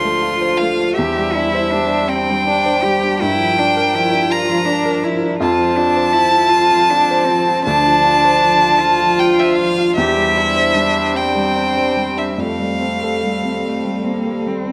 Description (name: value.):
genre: neoclassical piano and strings.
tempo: 47-55 BPM (dotted quarters).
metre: 6/8.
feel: rubato.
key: F major.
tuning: A4 = 440 Hz.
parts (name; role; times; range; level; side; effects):
clear violin; melody; 0.0-14.5 s; E5 to C6; -18 LUFS; equal; none.
rich cello; second line; 0.0-14.7 s; A3 to G4; -23 LUFS; equal; none.
warm upright piano; accompaniment; 0.0-14.7 s; D2 to C5; -21 LUFS; equal; none.
pedal harmonium; sustained chords; 0.0-14.7 s; F3 to C5; -28 LUFS; equal; none.
room: light reverb, studio reverb.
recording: none.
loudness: -16 LUFS.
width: mono.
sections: 0.0-14.7 A section.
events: none.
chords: 0.0 Dm7; 1.0 Cadd9/E; 3.2 Gm7; 5.4 F; 7.7 Dm7; 10.0 Cadd9/E; 12.4 Fadd9.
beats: | 0.95 2.08 | 3.19 4.30 | 5.40 6.52 | 7.65 8.80 | 9.95 11.14 | 12.38 13.64.